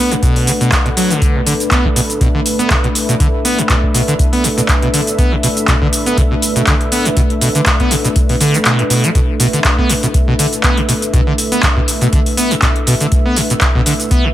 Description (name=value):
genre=acid house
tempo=121 BPM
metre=4/4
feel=swing 55% on 16ths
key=B minor pentatonic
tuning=A4 = 439 Hz
part: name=dark analog pad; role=sustained chords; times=0.0-14.3 s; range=A3 to F#5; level=-19 LUFS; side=equal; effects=chorus, sidechain pumping
part: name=acid bass, saw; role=riff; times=0.0-14.3 s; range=A2 to B3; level=-16 LUFS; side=equal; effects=overdrive, lush chorus, sidechain pumping, ping-pong delay
part: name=booming analog drum machine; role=drums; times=0.1-14.2 s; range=cabasa, handclaps, hi-hat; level=-17 LUFS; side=equal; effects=none
part: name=electronic kick drum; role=drums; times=0.2-14.2 s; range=none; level=-15 LUFS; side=equal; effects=none
room=light reverb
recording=none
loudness=-11 LUFS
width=side -13 dB against mid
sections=0.0-14.3 A section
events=kick drops out 8.7-9.2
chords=0.0 Bm7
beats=0.23 0.72 | 1.22 1.71 2.21 2.71 | 3.20 3.70 4.19 4.69 | 5.18 5.68 6.18 6.67 | 7.17 7.66 8.16 8.66 | 9.15 9.65 10.14 10.64 | 11.13 11.63 12.13 12.62 | 13.12 13.62 14.11